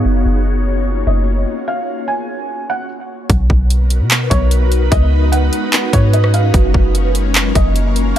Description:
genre	hip hop, atmospheric cloud-rap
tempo	148 BPM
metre	4/4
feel	half-time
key	F# major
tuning	A4 = 442 Hz
part	felt-muted upright piano	melody	0.0-8.2 s	C#5 to G#5	-23 LUFS	equal	low-pass filter, tape echo
part	ethereal airy pad	sustained chords	0.0-8.2 s	F#3 to C#5	-20 LUFS	left 1 dB	ensemble chorus, built-in reverb, phaser, low-pass filter
part	soft 808-style bass	bass	0.0-8.1 s	F#1 to B2	-14 LUFS	equal	none
part	trap drum kit	drums	3.3-8.2 s	handclaps, hi-hat, kick drum, rim click	-14 LUFS	equal	overdrive
room	little or no reverb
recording	none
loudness	-12 LUFS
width	side -11 dB against mid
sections	0.0-3.3 A section; 3.3-8.2 B section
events	stop 1.7-3.3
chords	0.1 F#maj7; 3.3 Bmaj7; 4.9 C#9sus4; 6.5 F#maj7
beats	| 0.05 0.46 0.86 1.27 | 1.68 2.08 2.48 2.89 | 3.30 3.70 4.11 4.51 | 4.92 5.32 5.73 6.13 | 6.54 6.95 7.35 7.76 | 8.16

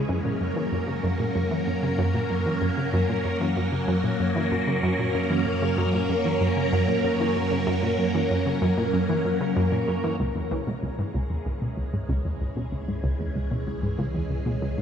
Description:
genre	ambient, sequencer-driven space music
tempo	95 BPM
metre	4/4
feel	straight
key	C# dorian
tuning	A4 = 439 Hz
part	phased string machine	sustained chords	0.0-14.8 s	E3 to A#4	-26 LUFS	equal	ensemble chorus, phaser, shimmer reverb
part	analog pluck	riff	0.0-14.8 s	C#2 to E3	-26 LUFS	equal	chorus, tape echo
part	analog drone	bass	1.9-14.8 s	C#2 to F#2	-34 LUFS	equal	none
room	wet cathedral reverb, RT60 5.8 s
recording	in a vast, echoing space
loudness	-23 LUFS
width	side -8 dB against mid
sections	0.0-10.2 A section; 10.2-14.8 B section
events	filter sweep on synth arpeggio sound 0.0-10.2, 10.2-14.8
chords	0.1 F#; 10.2 C#m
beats	| 0.09 0.72 1.35 1.99 | 2.62 3.25 3.88 4.51 | 5.14 5.78 6.41 7.04 | 7.67 8.30 8.93 9.56 | 10.20 10.83 11.46 12.09 | 12.72 13.36 13.99 14.62

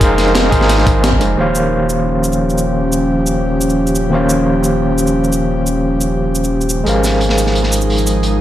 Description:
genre	liquid drum and bass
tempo	175 BPM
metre	4/4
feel	straight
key	unclear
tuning	A4 = 438 Hz
part	overdriven tine electric piano	accompaniment	0.0-8.4 s	Eb3 to F5	-16 LUFS	right 1 dB	fast tremolo, tape echo
part	airy breathy pad	sustained chords	0.0-8.4 s	F3 to Bb4	-18 LUFS	equal	chorus, sidechain pumping
part	warm sub bass	bass	0.0-8.4 s	Eb1 to Ab1	-19 LUFS	equal	none
part	breakbeat sampler-style drum kit	drums	0.0-8.1 s	hi-hat, shaker, snare drum	-20 LUFS	left 1 dB	studio reverb
part	crunchy breakbeat drum kit	drums	0.0-1.3, 6.9-8.3 s	hi-hat, snare drum	-21 LUFS	equal	high-pass filter on hats, studio reverb, high-pass filter on snare, high-pass filter on room
part	electronic kick drum	drums	0.0-1.2 s	none	-16 LUFS	equal	studio reverb
room	light reverb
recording	none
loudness	-12 LUFS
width	side -12 dB against mid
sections	0.0-1.4 A section; 1.4-8.4 B section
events	filter sweep on tine electric piano 0.0-1.4; band accent 1.0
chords	0.0 Ab6; 1.4 Eb13; 6.9 Ab6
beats	| 0.01 0.35 0.70 1.04 | 1.38 1.73 2.07 2.41 | 2.75 3.10 3.44 3.78 | 4.12 4.47 4.81 5.15 | 5.50 5.84 6.18 6.53 | 6.87 7.21 7.55 7.90 | 8.24

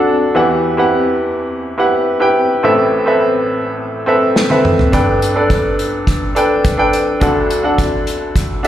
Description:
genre	piano-driven pop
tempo	105 BPM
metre	4/4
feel	straight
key	G major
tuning	A4 = 438 Hz
part	bright upright piano	accompaniment	0.0-8.7 s	G1 to A5	-13 LUFS	equal	slapback echo
part	unplugged drum kit	drums	4.4-8.7 s	hi-hat, kick drum, snare drum, toms	-16 LUFS	equal	none
room	moderate lush hall reverb, RT60 1.8 s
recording	live gig heard through the venue's PA, club reverb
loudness	-12 LUFS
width	side -11 dB against mid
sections	0.0-8.7 A section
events	drum fill 4.4-4.9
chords	0.4 Emadd9; 2.6 Amadd9; 4.9 Gadd9; 7.2 D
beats	| 0.36 0.93 1.50 2.07 | 2.64 3.21 3.79 4.36 | 4.93 5.50 6.07 6.64 | 7.22 7.79 8.36

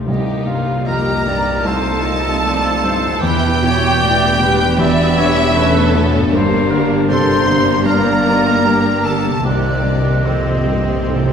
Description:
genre	cinematic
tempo	76 BPM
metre	4/4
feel	rubato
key	unclear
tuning	A4 = 440 Hz
part	felt-muted upright piano	accompaniment	0.0-11.3 s	C2 to B3	-22 LUFS	equal	none
part	warm symphonic viola section	accompaniment	0.0-11.3 s	E3 to D4	-22 LUFS	equal	none
part	concert harp	arpeggios	0.0-11.3 s	E2 to D5	-26 LUFS	left 3 dB	none
part	concert flute	second line	0.1-11.3 s	A4 to F5	-24 LUFS	left 1 dB	none
part	warm studio violin section	second line	0.1-11.3 s	Bb3 to Bb4	-26 LUFS	left 2 dB	none
part	mellow French horn section	sustained chords	0.1-11.3 s	Bb2 to Eb4	-22 LUFS	left 4 dB	none
part	rich symphonic cello section	bass	0.1-11.3 s	C2 to C3	-23 LUFS	right 3 dB	none
part	warm studio double bass section	bass	0.1-11.3 s	E1 to C2	-22 LUFS	right 2 dB	none
part	timpani	percussion	0.1-1.2, 6.3-11.3 s	G2 to C3	-24 LUFS	right 2 dB	none
part	warm symphonic violin section	melody	0.9-11.3 s	C5 to C6	-20 LUFS	left 2 dB	none
part	mellow cor anglais	second line	0.9-11.3 s	C4 to C5	-21 LUFS	right 3 dB	none
part	dark clarinet	second line	10.3-11.3 s	G4 to A4	-28 LUFS	equal	none
room	wet scoring stage reverb, RT60 1.8 s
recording	heard from further back in the room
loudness	-12 LUFS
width	side -7 dB against mid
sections	0.0-11.3 A section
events	timpani fill 9.5-11.3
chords	0.1 Cm7; 3.2 Em7; 6.3 Gm; 9.5 Cm7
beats	| 0.08 0.87 1.66 2.44 | 3.23 4.01 4.79 5.56 | 6.33 7.09 7.86 8.65 | 9.45 10.27 11.09

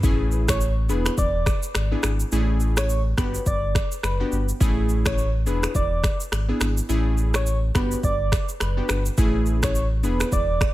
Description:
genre	afrobeats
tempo	105 BPM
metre	4/4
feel	swing 58% on 16ths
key	A major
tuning	A4 = 440 Hz
part	glassy digital keys	accompaniment	0.0-10.2 s	A3 to G#4	-27 LUFS	equal	chorus
part	sub bass with octave	bass	0.0-10.6 s	E1 to A1	-23 LUFS	equal	none
part	afro-pop drum kit	drums	0.0-10.7 s	finger snaps, kick drum, rim click, shaker	-24 LUFS	equal	overdrive
part	soft struck synth lead	melody	0.5-10.7 s	B4 to D5	-29 LUFS	right 1 dB	chorus, ping-pong delay
room	digital ambience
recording	none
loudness	-20 LUFS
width	side -16 dB against mid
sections	0.0-10.7 A section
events	none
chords	0.0 Amaj7; 0.9 E7; 2.3 Amaj7; 3.2 Gmaj7; 4.6 Amaj7; 5.5 E7; 6.9 Amaj7; 7.7 Gmaj7; 9.2 Amaj7; 10.0 E7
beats	| 0.03 0.61 1.18 1.75 | 2.32 2.89 3.46 4.03 | 4.61 5.18 5.75 6.32 | 6.89 7.46 8.03 8.61 | 9.18 9.75 10.32

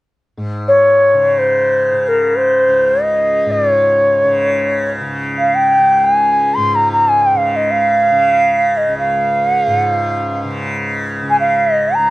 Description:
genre	indian classical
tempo	free time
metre	none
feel	none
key	Db raga yaman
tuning	A4 = 440 Hz
part	tanpura	drone	0.4-12.1 s	Db2 to Db3	-20 LUFS	equal	none
part	reedy bansuri	melody	0.7-12.1 s	Bb4 to C6	-11 LUFS	equal	none
room	little or no reverb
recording	recorded outdoors, with no room sound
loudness	-11 LUFS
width	side -18 dB against mid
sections	0.4-12.1 A section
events	none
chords	none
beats	free time

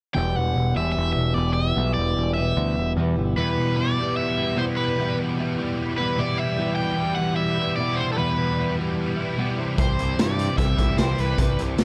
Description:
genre	indie rock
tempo	150 BPM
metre	4/4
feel	straight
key	E minor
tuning	A4 = 440 Hz
part	cranked stack guitar	melody	0.1-11.6 s	A4 to G5	-29 LUFS	equal	overdrive, digital delay
part	twelve-string electric guitar	riff	0.1-11.8 s	E2 to E4	-28 LUFS	equal	none
part	growling picked electric bass	bass	0.2-3.3, 9.8-11.8 s	E1 to G2	-27 LUFS	equal	overdrive
part	sludgy distorted guitar	riff	3.4-11.8 s	E2 to E4	-31 LUFS	equal	overdrive, ensemble chorus, digital delay
part	raw garage drum kit	drums	9.8-11.8 s	hi-hat, kick drum, snare drum	-26 LUFS	equal	none
room	light reverb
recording	dark, warm production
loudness	-23 LUFS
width	mono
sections	0.2-3.4 A section; 3.4-11.8 B section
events	none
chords	0.2 Em; 9.6 C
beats	| 0.16 0.56 0.96 1.37 | 1.77 2.17 2.57 2.97 | 3.37 3.77 4.17 4.58 | 4.98 5.38 5.78 6.18 | 6.58 6.98 7.38 7.78 | 8.19 8.59 8.98 9.38 | 9.79 10.19 10.58 10.98 | 11.38 11.78

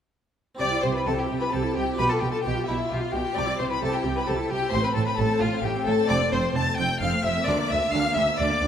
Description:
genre	classical, baroque-style concerto movement with solo episodes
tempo	131 BPM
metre	3/4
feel	straight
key	C major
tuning	A4 = 440 Hz
part	harpsichord	accompaniment	0.5-8.7 s	D2 to Bb4	-32 LUFS	right 2 dB	none
part	dark chamber violin section	melody	0.6-8.7 s	E5 to A6	-31 LUFS	left 6 dB	none
part	rich violin	melody	0.6-8.7 s	E4 to A5	-28 LUFS	left 1 dB	none
part	warm symphonic violin section	second line	0.6-8.7 s	E4 to A5	-30 LUFS	left 3 dB	none
part	warm studio viola section	accompaniment	0.6-8.7 s	A3 to G4	-32 LUFS	right 1 dB	none
part	warm chamber cello section	bass	0.6-8.7 s	D2 to C3	-31 LUFS	right 3 dB	none
part	warm chamber double bass section	bass	0.6-8.7 s	F1 to D2	-30 LUFS	right 3 dB	none
room	moderate scoring stage reverb, RT60 1.4 s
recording	none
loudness	-22 LUFS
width	side -8 dB against mid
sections	0.6-8.7 A section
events	none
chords	0.6 C; 2.0 G7/B; 3.4 C; 4.7 Am; 6.1 F; 7.5 Bb/D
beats	| 0.60 1.06 1.52 | 1.98 2.44 2.90 | 3.36 3.82 4.27 | 4.73 5.18 5.64 | 6.09 6.55 7.01 | 7.46 7.92 8.38

